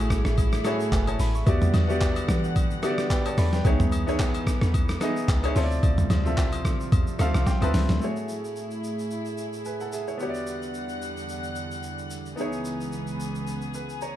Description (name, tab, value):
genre	amapiano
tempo	110 BPM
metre	4/4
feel	swing 55% on 16ths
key	F# minor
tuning	A4 = 441 Hz
part	bright concert grand piano	accompaniment	0.0-14.2 s	A3 to C#6	-29 LUFS	equal	none
part	warm studio string section	sustained chords	0.0-14.2 s	C#2 to F#5	-33 LUFS	right 1 dB	none
part	deep log drum bass	bass	0.0-8.0 s	F#1 to E3	-25 LUFS	equal	none
part	boom bap sampler-style drum kit	drums	0.1-14.2 s	handclaps, hi-hat, kick drum, rim click, shaker, snare drum, toms	-26 LUFS	equal	overdrive
part	agogo bells and woodblock	percussion	0.4-7.7 s	none	-39 LUFS	left 4 dB	none
room	light reverb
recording	dark, warm production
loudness	-23 LUFS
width	side -12 dB against mid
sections	0.0-8.0 A section; 8.0-14.2 B section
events	drop 0.0-8.0; grand piano fill 6.9-8.0; drum fill 7.5-8.0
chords	0.0 F#m9; 1.5 Em9; 3.6 C#m9; 5.6 Dm9; 8.0 F#m9; 10.2 Em9; 12.4 C#m9